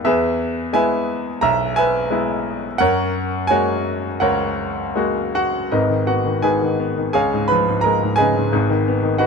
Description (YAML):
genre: classical, lyrical solo piano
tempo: 78-90 BPM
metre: 4/4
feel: rubato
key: G# dorian from 5.7 s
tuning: A4 = 442 Hz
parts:
  - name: bright grand piano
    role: solo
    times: 0.0-9.3 s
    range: G#1 to B5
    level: -17 LUFS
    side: equal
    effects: none
room: light reverb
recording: dark, warm production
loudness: -17 LUFS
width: side -5 dB against mid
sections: 0.0-5.7 A section; 5.7-9.3 B section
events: none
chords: 0.1 E; 2.8 F#add9; 5.7 G#madd9; 7.1 C#; 8.5 G#m7